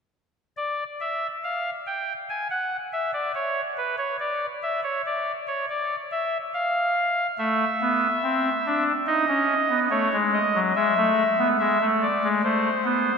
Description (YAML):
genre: classical, baroque-style 3-part fugue for pipe organ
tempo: 71 BPM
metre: 4/4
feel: straight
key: unclear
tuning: A4 = 441 Hz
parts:
  - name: pipe organ, soft reed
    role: solo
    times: 0.6-13.2 s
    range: F#3 to G#5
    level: -22 LUFS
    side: equal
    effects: none
room: wet cathedral reverb, RT60 4.2 s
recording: minimal, uncompressed stereo recording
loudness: -22 LUFS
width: side -5 dB against mid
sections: 0.6-13.2 A section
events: none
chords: 0.6 N.C.; 7.4 Am; 9.1 N.C.; 10.8 E7/G#; 12.4 Am